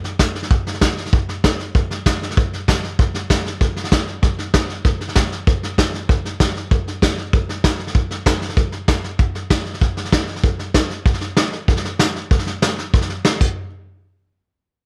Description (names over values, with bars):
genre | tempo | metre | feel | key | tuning
rock | 193 BPM | 4/4 | straight | none | none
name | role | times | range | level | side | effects
vintage brush drum kit | drums | 0.0-13.5 s | crash cymbal, hi-hat, kick drum, snare drum | -19 LUFS | equal | none
room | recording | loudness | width
light reverb | none | -19 LUFS | mono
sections
0.0-11.1 A section; 11.1-13.6 B section; 13.6-14.8 C section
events
none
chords
none